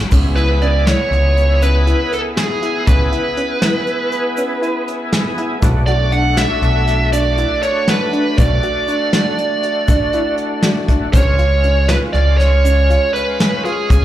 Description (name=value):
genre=progressive instrumental, band music in an uneven meter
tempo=239 BPM (eighths)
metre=11/8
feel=straight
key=unclear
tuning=A4 = 440 Hz
part: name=overdriven tonewheel organ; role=accompaniment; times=0.0-14.0 s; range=G#3 to G#4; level=-23 LUFS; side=left 1 dB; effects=chorus vibrato, slow rotary speaker, slapback echo
part: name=soft round pluck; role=arpeggios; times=0.0-14.0 s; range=C#4 to G#4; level=-25 LUFS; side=left 1 dB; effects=chorus, slapback echo, ping-pong delay
part: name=deep dub picked electric bass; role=bass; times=0.1-14.0 s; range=B1 to C#2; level=-14 LUFS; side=equal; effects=none
part: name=soft brush drum kit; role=drums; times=0.1-14.0 s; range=crash cymbal, hi-hat, kick drum, snare drum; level=-17 LUFS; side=equal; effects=none
part: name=egg shaker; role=percussion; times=0.1-14.0 s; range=none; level=-39 LUFS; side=left 4 dB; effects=none
part: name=bluesy overdriven lead guitar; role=melody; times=0.4-14.0 s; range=G#4 to F#5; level=-18 LUFS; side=right 2 dB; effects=distortion, slapback echo, ping-pong delay
room=light reverb, small room ambience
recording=live gig heard through the venue's PA, club reverb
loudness=-13 LUFS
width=side -12 dB against mid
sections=0.1-14.0 A section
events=none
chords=0.1 C#m7; 5.6 Bm7; 11.1 C#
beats=| 0.12 0.37 0.62 0.87 1.12 1.37 1.62 1.87 2.12 2.37 2.62 | 2.87 3.12 3.37 3.62 3.87 4.12 4.37 4.62 4.87 5.12 5.37 | 5.62 5.87 6.12 6.38 6.63 6.88 7.13 7.38 7.63 7.88 8.13 | 8.38 8.63 8.88 9.13 9.38 9.63 9.89 10.14 10.39 10.64 10.89 | 11.14 11.39 11.64 11.89 12.15 12.40 12.65 12.90 13.15 13.40 13.65 | 13.90